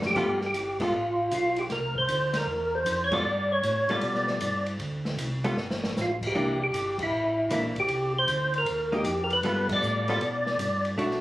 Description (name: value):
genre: soul jazz organ trio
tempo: 155 BPM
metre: 4/4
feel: swing 66% on 8ths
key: G mixolydian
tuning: A4 = 440 Hz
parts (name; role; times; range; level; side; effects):
- mellow tonewheel organ; bass; 0.0-11.2 s; G1 to B2; -34 LUFS; equal; slow rotary speaker
- open jazz drum kit; drums; 0.0-11.2 s; crash cymbal, hi-hat, kick drum, ride cymbal, snare drum; -34 LUFS; equal; none
- percussive tonewheel organ; melody; 0.1-10.8 s; E4 to D5; -26 LUFS; equal; slow rotary speaker, chorus vibrato, plate reverb
- archtop guitar, miked and amplified; accompaniment; 0.2-11.2 s; E3 to A4; -29 LUFS; equal; none
room: moderate club reverb, RT60 0.6 s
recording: recorded on a phone in the room, studio reverb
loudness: -24 LUFS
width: side -16 dB against mid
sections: 0.2-11.2 A section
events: drum fill 0.0, 5.6-6.0; band accent 0.7, 3.1, 6.9, 9.6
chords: 0.2 G9; 1.7 C9; 3.2 G9; 4.8 Dm7; 5.6 Gsus2; 6.3 C9; 7.9 Cm7; 9.4 G9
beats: | 0.16 0.55 0.93 1.32 | 1.70 2.09 2.47 2.86 | 3.25 3.63 4.02 4.41 | 4.79 5.18 5.56 5.95 | 6.34 6.72 7.11 7.50 | 7.88 8.27 8.65 9.04 | 9.43 9.81 10.20 10.58 | 10.97